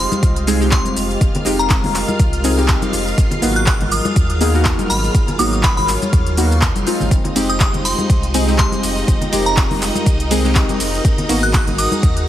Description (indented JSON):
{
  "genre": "deep house",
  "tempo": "122 BPM",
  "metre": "4/4",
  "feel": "swing 56% on 16ths",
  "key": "unclear",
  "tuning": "A4 = 441 Hz",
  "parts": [
    { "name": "glassy synth bell", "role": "melody", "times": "0.0-11.9 s", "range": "Bb5 to Gb6", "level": "-23 LUFS", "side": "equal", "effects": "chorus, phaser, tape echo" },
    { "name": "warm analog pad", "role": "sustained chords", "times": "0.0-12.3 s", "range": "Gb3 to Eb5", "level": "-26 LUFS", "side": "equal", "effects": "chorus, sidechain pumping" },
    { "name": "deep mellow chord stab", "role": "stabs", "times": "0.0-12.3 s", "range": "Ab3 to Ab4", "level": "-21 LUFS", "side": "equal", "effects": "chorus, sidechain pumping, tape echo" },
    { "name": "warm sub bass", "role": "bass", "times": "0.0-12.3 s", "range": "F1 to Eb2", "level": "-20 LUFS", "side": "equal", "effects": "sidechain pumping" },
    { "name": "string machine, violins", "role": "texture", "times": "0.0-12.3 s", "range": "Eb4 to F5", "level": "-26 LUFS", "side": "equal", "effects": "ensemble chorus, sidechain pumping" },
    { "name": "deep house drum kit", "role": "drums", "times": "0.1-12.3 s", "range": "handclaps, hi-hat, ride cymbal, shaker", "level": "-22 LUFS", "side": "equal", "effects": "small room ambience" },
    { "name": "congas", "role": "percussion", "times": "0.1-12.0 s", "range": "none", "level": "-25 LUFS", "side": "left 3 dB", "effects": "sidechain pumping on perc" },
    { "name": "electronic kick drum", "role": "drums", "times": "0.2-12.1 s", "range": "none", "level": "-16 LUFS", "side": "equal", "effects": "small room ambience" }
  ],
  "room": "little or no reverb",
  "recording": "heavily compressed radio sound",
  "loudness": "-13 LUFS",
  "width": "side -12 dB against mid",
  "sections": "0.0-12.3 A section",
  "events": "none",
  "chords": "0.0 Fm9; 3.2 Abm9; 7.1 Fm9; 11.0 Abm9",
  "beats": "0.23 0.72 | 1.21 1.70 2.19 2.69 | 3.18 3.67 4.16 4.65 | 5.15 5.64 6.13 6.62 | 7.11 7.61 8.10 8.59 | 9.08 9.57 10.06 10.56 | 11.05 11.54 12.03"
}